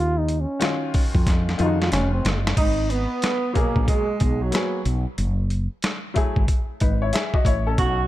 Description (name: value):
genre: hip hop, jazz-hop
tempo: 92 BPM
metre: 4/4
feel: swing 65% on 16ths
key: G# dorian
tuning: A4 = 441 Hz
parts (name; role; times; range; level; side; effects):
- breathy trombone; melody; 0.0-8.1 s; F#3 to F#4; -26 LUFS; equal; none
- woody fretless electric bass; bass; 0.0-8.1 s; E#1 to E#2; -23 LUFS; equal; lush chorus
- boom bap sampler-style drum kit; drums; 0.3-8.0 s; crash cymbal, hi-hat, kick drum, snare drum; -22 LUFS; equal; none
- clear upright piano; accompaniment; 0.6-8.0 s; B2 to E5; -27 LUFS; left 4 dB; none
- breathy tenor saxophone; second line; 2.6-8.1 s; F#3 to F#4; -28 LUFS; right 6 dB; slapback echo
room: small room ambience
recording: dark, warm production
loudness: -20 LUFS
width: side -14 dB against mid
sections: 0.0-2.6 A section; 2.6-8.1 B section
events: trombone solo 0.0-2.6; drum fill 1.3-2.6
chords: 0.0 D#m9; 2.6 G#m9; 5.2 F#m9